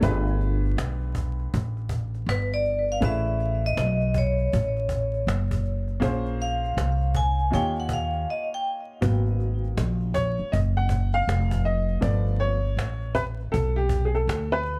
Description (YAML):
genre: hip hop, jazz-hop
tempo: 80 BPM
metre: 4/4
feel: swing 65% on 16ths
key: unclear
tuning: A4 = 443 Hz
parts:
  - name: warm upright piano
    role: accompaniment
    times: 0.0-14.8 s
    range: F3 to F#5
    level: -32 LUFS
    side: equal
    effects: none
  - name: upright bass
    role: bass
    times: 0.0-14.8 s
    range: E#1 to D#2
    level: -27 LUFS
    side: equal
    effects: none
  - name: cajon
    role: drums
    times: 0.0-14.8 s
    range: none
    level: -35 LUFS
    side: equal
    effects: none
  - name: vibraphone with hard mallets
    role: melody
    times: 2.3-8.7 s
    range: B4 to G#5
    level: -31 LUFS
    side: equal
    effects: tape echo
room: studio reverb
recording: vinyl crackle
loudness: -25 LUFS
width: mono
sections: 0.0-9.0 A section; 9.0-14.8 A section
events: vibraphone solo 0.0-9.0; break 8.3-9.0; upright piano solo 9.0-14.8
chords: 0.0 G9; 3.0 Amaj9; 6.0 A#m9; 7.5 D#7; 9.0 G#m9; 12.0 G9